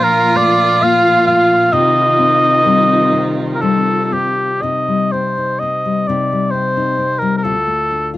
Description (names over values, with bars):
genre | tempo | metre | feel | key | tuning
celtic folk, Celtic slow air | 59-67 BPM | 3/4 | rubato | C dorian | A4 = 439 Hz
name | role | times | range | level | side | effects
mellow oboe | melody | 0.0-8.1 s | G4 to F5 | -14 LUFS | equal | cassette tape
warm viola | second line | 0.0-4.1 s | Eb4 to F4 | -20 LUFS | right 5 dB | cassette tape
nylon-string guitar | accompaniment | 0.0-8.2 s | D2 to F4 | -19 LUFS | left 5 dB | cassette tape
rich symphonic string section | sustained chords | 0.0-4.6 s | Bb2 to F4 | -18 LUFS | equal | cassette tape
room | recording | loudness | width
light reverb | home recording on cassette | -12 LUFS | side -16 dB against mid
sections
0.0-4.6 A section; 4.6-8.2 B section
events
none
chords
0.0 Bbmaj7; 1.7 Cm; 7.5 Dm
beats
0.82 | 1.74 2.67 3.63 | 4.64 5.62 6.54 | 7.45